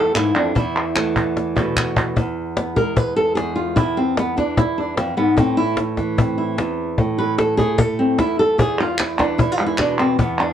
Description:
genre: flamenco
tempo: 149 BPM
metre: 4/4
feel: straight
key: E phrygian dominant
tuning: A4 = 440 Hz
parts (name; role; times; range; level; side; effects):
- flamenco guitar; melody; 0.0-10.5 s; E2 to B4; -18 LUFS; equal; plate reverb
- cajon; percussion; 0.2-10.5 s; none; -20 LUFS; left 2 dB; none
- palmas hand claps; percussion; 0.2-2.2, 8.8-10.5 s; none; -22 LUFS; right 2 dB; none
room: moderate studio ambience, RT60 0.5 s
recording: worn, warbling old tape, cassette tape, warbly pitch drift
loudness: -17 LUFS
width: side -9 dB against mid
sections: 0.0-2.2 A section; 2.2-10.5 B section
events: drum fill 1.4-2.2; nylon-string guitar solo 2.2-10.5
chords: 0.0 A5; 0.6 Esus4; 2.2 E; 5.4 Am; 8.6 E

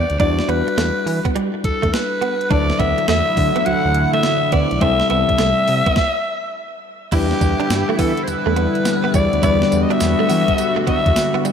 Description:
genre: R&B, new jack swing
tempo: 104 BPM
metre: 4/4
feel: swing 65% on 16ths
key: E minor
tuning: A4 = 440 Hz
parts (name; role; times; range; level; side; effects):
- raspy alto saxophone; melody; 0.0-11.4 s; G4 to F#5; -20 LUFS; left 1 dB; shimmer reverb, tape echo
- tine electric piano; accompaniment; 0.0-11.5 s; F#3 to B4; -25 LUFS; left 6 dB; lush chorus, shimmer reverb
- direct-recorded clean electric guitar; riff; 0.0-11.5 s; F#3 to E4; -25 LUFS; right 6 dB; ensemble chorus, shimmer reverb
- smooth synth bass; bass; 0.0-11.1 s; B1 to E3; -22 LUFS; equal; none
- crisp 8-bit digital drum machine; drums; 0.1-11.5 s; crash cymbal, hi-hat, kick drum, snare drum, tambourine; -22 LUFS; right 1 dB; overdrive
- chorused pulse-width pad; sustained chords; 2.5-11.5 s; C3 to F#4; -21 LUFS; left 1 dB; none
room: wet plate reverb, RT60 1.4 s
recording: dreamy mix soaked in reverb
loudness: -15 LUFS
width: side -7 dB against mid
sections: 0.0-7.1 A section; 7.1-11.5 B section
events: stop 6.0-7.1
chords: 0.0 Em7; 2.5 Dadd9; 4.8 C6; 7.1 Em7

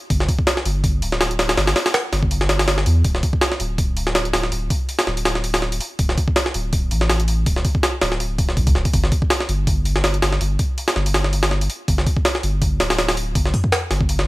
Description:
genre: drum and bass, jungle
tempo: 163 BPM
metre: 4/4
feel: swing 55% on 16ths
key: unclear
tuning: A4 = 440 Hz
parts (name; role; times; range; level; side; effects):
- saturated sub bass; bass; 0.1-14.3 s; D1 to E2; -21 LUFS; equal; none
- jungle sampler-style drum kit; drums; 0.1-14.3 s; hi-hat, kick drum, snare drum; -18 LUFS; equal; none
room: little or no reverb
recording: vinyl crackle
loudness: -17 LUFS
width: side -19 dB against mid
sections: 0.0-14.3 A section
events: kick drops out 14.1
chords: none

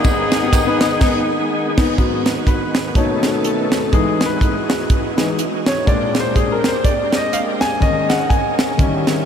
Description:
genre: uptempo gospel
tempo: 123 BPM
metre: 4/4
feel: swing 58% on 8ths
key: G# minor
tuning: A4 = 438 Hz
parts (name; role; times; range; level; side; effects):
- clear horn section; melody; 0.0-1.8 s; B3 to G#4; -22 LUFS; left 2 dB; analog delay
- clear grand piano; accompaniment; 0.0-9.3 s; G#1 to G#5; -19 LUFS; left 3 dB; none
- bright tonewheel organ; sustained chords; 0.0-9.3 s; D#3 to C#5; -25 LUFS; right 2 dB; slow rotary speaker, overdrive, chorus vibrato
- tight funk drum kit; drums; 0.0-9.2 s; crash cymbal, hi-hat, kick drum, ride cymbal, snare drum; -18 LUFS; right 1 dB; none
- tambourine and handclaps; percussion; 0.0-0.9 s; none; -33 LUFS; right 4 dB; none
- mellow French horn section; sustained chords; 2.0-9.3 s; D#3 to E5; -30 LUFS; right 2 dB; none
room: wet huge ambient reverb, RT60 4.8 s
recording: dreamy mix soaked in reverb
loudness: -14 LUFS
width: side -8 dB against mid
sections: 0.0-2.0 A section; 2.0-9.3 B section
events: band accent 1.0-2.0; grand piano solo 2.0-9.3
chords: 0.0 G#m; 2.0 G#m7; 3.0 B9; 3.9 Emaj9; 5.9 A#13; 7.8 D#7sus4

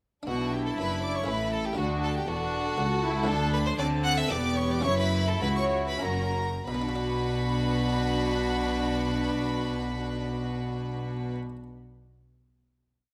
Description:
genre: classical, baroque-style concerto movement with solo episodes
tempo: 90-121 BPM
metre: 3/4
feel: straight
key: B minor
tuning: A4 = 440 Hz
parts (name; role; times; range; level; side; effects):
- buff-stop harpsichord; accompaniment; 0.2-11.6 s; C#2 to D5; -40 LUFS; equal; none
- rich studio violin section; melody; 0.3-11.3 s; F#5 to F#6; -38 LUFS; equal; none
- rich violin; melody; 0.3-11.4 s; F#4 to F#5; -36 LUFS; equal; none
- rich chamber violin section; second line; 0.3-11.3 s; D4 to A4; -37 LUFS; equal; none
- rich chamber viola section; accompaniment; 0.3-11.3 s; B3 to F#4; -36 LUFS; equal; none
- clear chamber double bass section; bass; 0.3-11.3 s; E1 to D2; -36 LUFS; equal; none
- rich chamber cello section; bass; 0.3-11.3 s; C#2 to D3; -34 LUFS; equal; none
room: moderate recital hall reverb, RT60 1.4 s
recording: none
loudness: -28 LUFS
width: mono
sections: 0.3-6.7 ritornello; 6.7-10.6 final chord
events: slowing down 2.5-6.7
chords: 0.3 Bm; 1.3 A; 1.8 D; 3.3 D7; 4.3 Em; 4.9 F#5; 6.7 Bm

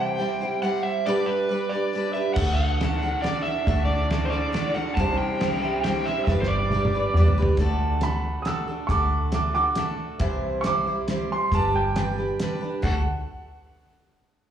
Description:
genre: folk rock and heartland rock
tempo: 138 BPM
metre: 3/4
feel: straight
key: D mixolydian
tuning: A4 = 441 Hz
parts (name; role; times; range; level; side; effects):
- overdriven slide guitar; melody; 0.0-7.3 s; B4 to A5; -27 LUFS; right 2 dB; slapback echo, tape echo
- picked steel-string acoustic guitar; accompaniment; 0.0-13.0 s; C3 to C5; -27 LUFS; equal; slapback echo
- fingered electric bass; bass; 2.4-13.0 s; G1 to E2; -25 LUFS; equal; none
- cloth-damped thuddy drum kit; drums; 2.4-12.9 s; crash cymbal, hi-hat, kick drum, ride cymbal, snare drum, toms; -28 LUFS; right 1 dB; slapback echo
- dark upright piano; second line; 8.0-13.0 s; F#5 to E6; -27 LUFS; right 3 dB; slapback echo
room: light reverb, studio reverb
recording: live gig heard through the venue's PA, club reverb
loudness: -22 LUFS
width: side -9 dB against mid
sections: 0.0-7.6 A section; 7.6-12.8 B section; 12.8-14.2 C section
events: drum fill 6.3-7.6; upright piano solo 7.6-12.8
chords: 0.0 C; 1.1 G; 2.4 D; 5.0 C; 6.3 G; 7.6 D; 10.2 C; 11.5 G; 12.8 D

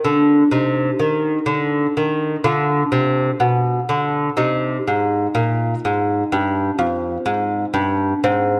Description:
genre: classical, baroque-style dance for lute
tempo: 62 BPM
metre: 4/4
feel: rubato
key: unclear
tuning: A4 = 437 Hz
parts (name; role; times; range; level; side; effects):
- lute; solo; 0.0-8.6 s; F2 to F4; -19 LUFS; equal; slapback echo
room: moderate plate reverb, RT60 2.6 s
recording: dark, warm production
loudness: -19 LUFS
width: mono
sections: 0.0-8.6 A section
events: none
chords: 0.0 N.C.; 0.5 Cm; 2.4 Bdim; 4.4 Cm (rootless)

